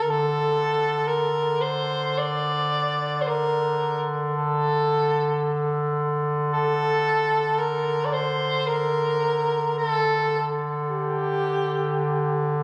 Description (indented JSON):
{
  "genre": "caucasian folk, Caucasian lament",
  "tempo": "55 BPM",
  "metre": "3/4",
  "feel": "rubato",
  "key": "unclear",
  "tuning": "A4 = 441 Hz",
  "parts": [
    { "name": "warm soprano saxophone", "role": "melody", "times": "0.0-12.5 s", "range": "G4 to D5", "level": "-26 LUFS", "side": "equal", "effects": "none" },
    { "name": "clear duduk", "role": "drone", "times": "0.0-12.6 s", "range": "D3", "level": "-28 LUFS", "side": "equal", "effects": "none" }
  ],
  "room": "wet church reverb, RT60 3.4 s",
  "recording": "recorded on a phone in the room, club reverb, compression",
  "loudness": "-24 LUFS",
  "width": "mono",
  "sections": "0.0-12.6 A section",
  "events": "none",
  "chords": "none",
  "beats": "1.08 2.18 | 3.28 4.35 5.42 | 6.49 7.57 8.66 | 9.77 10.88 11.99"
}